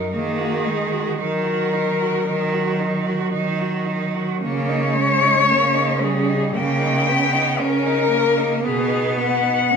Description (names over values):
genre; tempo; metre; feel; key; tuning
classical, lyrical piece for cello ensemble; 57 BPM; 4/4; rubato; Eb minor; A4 = 440 Hz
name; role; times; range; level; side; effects
warm cello; melody; 0.0-9.8 s; Ab4 to G5; -20 LUFS; left 4 dB; none
warm cello; second line; 0.0-9.8 s; Cb4 to Gb4; -26 LUFS; right 7 dB; none
rich cello; accompaniment; 0.0-9.8 s; Gb3 to Db4; -24 LUFS; equal; none
rich cello; bass; 0.1-9.8 s; Cb3 to Eb3; -24 LUFS; right 2 dB; none
room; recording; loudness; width
wet recital hall reverb, RT60 1.4 s; minimal, uncompressed stereo recording; -17 LUFS; side -6 dB against mid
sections
0.0-9.8 A section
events
none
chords
0.1 Ebm; 4.5 Eb7/Db; 8.7 Abm/Cb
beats
| 0.13 1.20 2.27 3.36 | 4.45 5.50 6.55 7.60 | 8.65 9.71